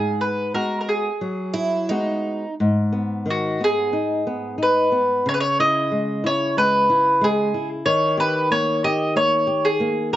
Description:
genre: fado-style ballad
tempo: 91 BPM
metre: 4/4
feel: rubato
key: G# minor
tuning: A4 = 442 Hz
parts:
  - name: mandolin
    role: melody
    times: 0.0-10.2 s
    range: F#4 to D#5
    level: -19 LUFS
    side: equal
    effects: none
  - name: flamenco guitar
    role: accompaniment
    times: 0.0-10.2 s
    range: G#2 to G4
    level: -23 LUFS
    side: left 1 dB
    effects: slapback echo
  - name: picked twelve-string acoustic guitar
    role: second line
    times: 1.5-2.5 s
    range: D#4 to E4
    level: -24 LUFS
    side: right 3 dB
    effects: none
room: little or no reverb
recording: recorded outdoors, with no room sound, nothing above 7.8 kHz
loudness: -18 LUFS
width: side -13 dB against mid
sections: 0.0-2.6 A section; 2.6-10.2 A section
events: none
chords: 0.0 G#m7; 2.6 G#m; 5.2 C#m7; 7.9 D#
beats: 0.54 1.21 1.89 | 2.58 3.25 3.92 4.58 | 5.24 5.90 6.56 7.21 | 7.86 8.50 9.15 9.80

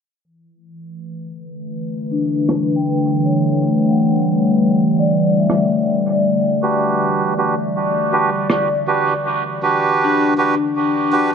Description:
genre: ambient dub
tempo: 80 BPM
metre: 4/4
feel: swing 57% on 16ths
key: E dorian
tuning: A4 = 440 Hz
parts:
  - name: warbly tape-like pad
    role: sustained chords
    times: 1.1-10.7 s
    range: D3 to D5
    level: -18 LUFS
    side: left 1 dB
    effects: chorus, built-in reverb
  - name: vibraphone with soft mallets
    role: arpeggios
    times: 2.1-11.3 s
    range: D4 to G5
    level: -21 LUFS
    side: left 4 dB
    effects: low-pass filter, dub echo
  - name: rim click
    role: drums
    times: 2.5-8.7 s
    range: none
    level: -22 LUFS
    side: right 2 dB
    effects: dub echo
  - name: melodica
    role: stabs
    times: 6.6-11.3 s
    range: D4 to B4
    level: -17 LUFS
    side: right 4 dB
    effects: dub echo
room: moderate plate reverb, RT60 2.1 s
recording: echo-heavy mix, low-pass filter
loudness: -15 LUFS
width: side -6 dB against mid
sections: 0.3-11.3 A section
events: filter sweep on ambient pad 0.3-11.3; filter sweep on vibraphone 0.3-11.3; filter sweep 0.3-11.3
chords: 0.3 Em7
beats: | 0.25 1.00 1.75 2.50 | 3.25 4.00 4.75 5.50 | 6.25 7.00 7.75 8.50 | 9.25 10.00 10.75

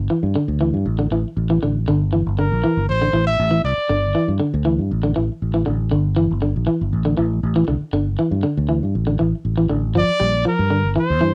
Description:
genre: afrobeat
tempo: 119 BPM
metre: 4/4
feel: straight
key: G dorian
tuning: A4 = 440 Hz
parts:
  - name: fingered electric bass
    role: bass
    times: 0.0-11.3 s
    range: G1 to G2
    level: -22 LUFS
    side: equal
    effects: none
  - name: electric guitar at the edge of break-up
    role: arpeggios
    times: 0.1-11.3 s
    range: D3 to G3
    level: -23 LUFS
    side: equal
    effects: none
  - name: bright trumpet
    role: melody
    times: 2.4-4.4, 10.0-11.3 s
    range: Bb4 to E5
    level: -23 LUFS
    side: equal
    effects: cassette tape
room: light reverb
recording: home recording on cassette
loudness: -19 LUFS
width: mono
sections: 0.0-10.0 A section; 10.0-11.3 B section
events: none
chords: 0.0 G5; 0.9 A5; 1.9 Gm; 2.9 Am; 3.9 G5; 4.9 A5; 5.9 G5; 6.9 A5; 7.9 G5; 8.9 A5; 10.0 Gm7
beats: 0.36 0.87 1.37 | 1.88 2.38 2.89 3.39 | 3.90 4.41 4.91 5.41 | 5.92 6.42 6.93 7.43 | 7.94 8.44 8.95 9.45 | 9.95 10.46 10.96

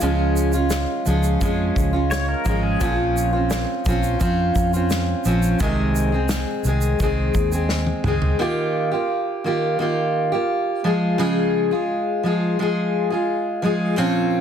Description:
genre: acoustic pop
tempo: 86 BPM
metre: 4/4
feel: straight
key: unclear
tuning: A4 = 441 Hz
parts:
  - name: fingerpicked steel-string acoustic guitar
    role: accompaniment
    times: 0.0-14.4 s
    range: Bb2 to Ab4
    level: -20 LUFS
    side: equal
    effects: none
  - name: vintage muted fingered electric bass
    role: bass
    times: 0.0-8.3 s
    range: Ab1 to F2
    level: -22 LUFS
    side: equal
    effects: none
  - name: unplugged drum kit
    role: drums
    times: 0.0-8.4 s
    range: kick drum, shaker, snare drum, toms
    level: -25 LUFS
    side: equal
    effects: none
  - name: pedal steel guitar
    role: second line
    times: 2.1-3.0 s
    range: Ab4 to Db5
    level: -28 LUFS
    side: left 2 dB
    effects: ping-pong delay
room: moderate studio reverb, RT60 0.9 s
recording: dense, heavily limited modern master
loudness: -18 LUFS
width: side -8 dB against mid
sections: 0.0-8.4 A section; 8.4-14.4 A section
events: drum fill 7.7-8.4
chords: 0.0 Db; 2.8 Bbmadd9; 5.6 Ab/C; 8.4 Ebadd9; 10.8 Db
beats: | 0.01 0.71 1.41 2.11 | 2.81 3.51 4.21 4.91 | 5.60 6.30 7.00 7.70 | 8.40 9.10 9.80 10.49 | 11.19 11.89 12.59 13.29 | 13.99

